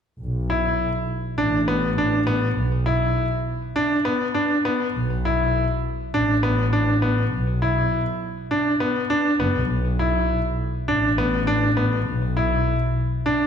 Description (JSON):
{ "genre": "piano and strings electronica", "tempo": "101 BPM", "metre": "4/4", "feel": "straight", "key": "B minor", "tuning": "A4 = 440 Hz", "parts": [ { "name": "muted studio double bass section", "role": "bass", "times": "0.2-12.9 s", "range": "F#1 to B1", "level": "-23 LUFS", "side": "equal", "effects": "none" }, { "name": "bright grand piano", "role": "riff", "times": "0.5-13.5 s", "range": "B3 to E4", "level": "-22 LUFS", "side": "equal", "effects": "ping-pong delay" } ], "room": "wet scoring stage reverb, RT60 1.4 s", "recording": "none", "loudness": "-20 LUFS", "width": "side -8 dB against mid", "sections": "0.2-13.5 A section", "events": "none", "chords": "0.2 Bm7; 5.0 F#madd11 (rootless); 9.7 Asus24", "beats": "| 0.20 0.79 1.39 1.98 | 2.58 3.17 3.76 4.36 | 4.95 5.54 6.14 6.73 | 7.33 7.92 8.52 9.11 | 9.70 10.30 10.89 11.49 | 12.08 12.67 13.27" }